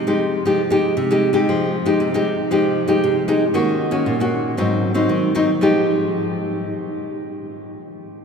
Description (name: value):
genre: samba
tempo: 116 BPM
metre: 4/4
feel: straight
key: F minor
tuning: A4 = 440 Hz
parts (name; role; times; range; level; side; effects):
- nylon-string guitar; solo; 0.0-6.4 s; Ab2 to G4; -17 LUFS; equal; none
room: wet cathedral reverb, RT60 6.6 s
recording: recorded in a church or concert hall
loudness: -16 LUFS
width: side -6 dB against mid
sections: 0.0-1.5 A section; 1.5-5.6 B section; 5.6-7.7 C section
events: none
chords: 0.0 Fm9; 3.5 Ebm7; 4.6 Ab7; 5.6 Fm9